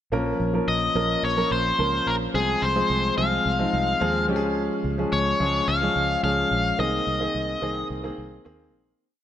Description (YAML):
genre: 1980s-style pop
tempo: 108 BPM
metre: 4/4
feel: straight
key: Bb minor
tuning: A4 = 441 Hz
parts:
  - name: clear grand piano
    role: accompaniment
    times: 0.1-9.0 s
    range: Eb3 to Bb4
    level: -26 LUFS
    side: equal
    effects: none
  - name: fingered electric bass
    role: bass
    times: 0.1-8.9 s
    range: Bb1 to Eb2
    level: -28 LUFS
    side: equal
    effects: none
  - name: biting lead guitar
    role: melody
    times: 0.7-7.9 s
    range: Ab4 to F5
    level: -24 LUFS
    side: left 2 dB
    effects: overdrive
room: moderate lush hall reverb, RT60 2.8 s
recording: none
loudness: -21 LUFS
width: side -10 dB against mid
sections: 0.1-9.0 verse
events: fade-out 6.8-9.0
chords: 0.1 Bbm; 2.3 Fm/C; 4.3 Db; 6.8 Abadd9/C